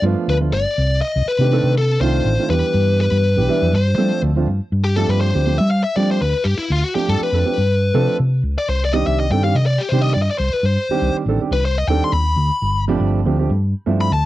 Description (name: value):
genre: electric jazz fusion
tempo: 121 BPM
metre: 4/4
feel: straight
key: G mixolydian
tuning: A4 = 439 Hz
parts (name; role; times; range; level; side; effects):
- biting lead guitar; melody; 0.0-14.3 s; E4 to C6; -21 LUFS; left 3 dB; overdrive
- dark concert grand piano; accompaniment; 0.0-14.2 s; Eb3 to A4; -21 LUFS; right 6 dB; none
- hollow-body short-scale fingered electric bass; bass; 0.0-14.2 s; G1 to G3; -17 LUFS; equal; none
room: little or no reverb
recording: dry, close 1970s-style studio recording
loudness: -15 LUFS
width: side -15 dB against mid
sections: 0.0-4.7 A section; 4.7-14.3 B section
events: lead electric guitar solo 4.7-14.3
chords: 0.0 G7; 0.8 Cm6; 2.5 Em7; 3.7 G7sus4; 4.7 G9sus4; 8.7 Cmadd9; 12.6 G9sus4